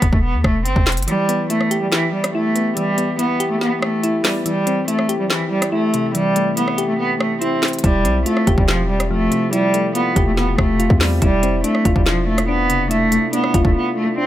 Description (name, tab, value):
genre	hip hop, drill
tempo	142 BPM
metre	4/4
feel	half-time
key	E phrygian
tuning	A4 = 440 Hz
part	rich cello	melody	0.0-14.3 s	E3 to C4	-19 LUFS	right 1 dB	low-pass filter
part	hard-hitting 808-style bass	bass	0.0-1.1, 7.8-13.8 s	E1 to E2	-20 LUFS	equal	none
part	drill drum kit	drums	0.0-13.7 s	handclaps, hi-hat, kick drum, rim click, snare drum	-20 LUFS	equal	none
part	soft electric-piano-like synth keys	accompaniment	1.1-14.3 s	C3 to G4	-22 LUFS	left 2 dB	chorus, low-pass filter
room	little or no reverb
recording	none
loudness	-15 LUFS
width	side -13 dB against mid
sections	0.0-14.3 A section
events	kick muted 1.1-7.8; break 13.8-14.3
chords	0.0 Emadd11; 1.1 Em; 4.5 Am7; 7.8 Fadd9/E; 11.2 Dm7/E